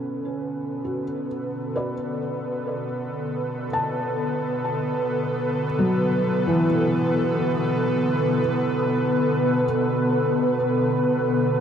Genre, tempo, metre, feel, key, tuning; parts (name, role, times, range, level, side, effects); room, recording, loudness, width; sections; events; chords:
ambient; 66 BPM; 4/4; straight; B minor; A4 = 443 Hz
airy breathy pad; sustained chords; 0.0-11.6 s; B2 to B4; -22 LUFS; equal; chorus
felt-muted upright piano; arpeggios; 0.0-9.7 s; E3 to A5; -27 LUFS; left 1 dB; tape echo
wet huge ambient reverb, RT60 7.5 s; -21 LUFS; side -8 dB against mid
0.0-9.6 A section; 9.6-11.6 B section
fade-in on analog synth pad 0.0-9.6; fade-in on felt piano 0.0-9.6
0.0 Bm9; 9.6 Bm7